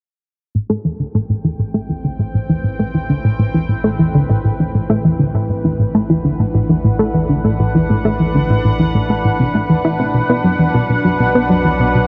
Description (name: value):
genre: ambient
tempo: 100 BPM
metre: 4/4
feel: straight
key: A dorian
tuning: A4 = 441 Hz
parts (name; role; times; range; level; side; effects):
- sweeping resonant pad; sustained chords; 0.5-12.1 s; A2 to G5; -23 LUFS; equal; chorus
- analog pluck; riff; 0.5-12.0 s; A2 to E4; -17 LUFS; equal; chorus, tape echo
- analog drone; bass; 1.7-12.1 s; A1 to B1; -31 LUFS; equal; chorus
room: moderate huge ambient reverb, RT60 7.3 s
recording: worn, warbling old tape, cassette tape, warbly pitch drift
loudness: -16 LUFS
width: mono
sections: 0.5-12.1 A section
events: fade-in on analog synth pad 0.5-12.1; fade-in on synth drone 0.5-12.1; filter sweep on synth arpeggio sound 0.5-12.1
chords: 0.5 Am7; 10.1 Bm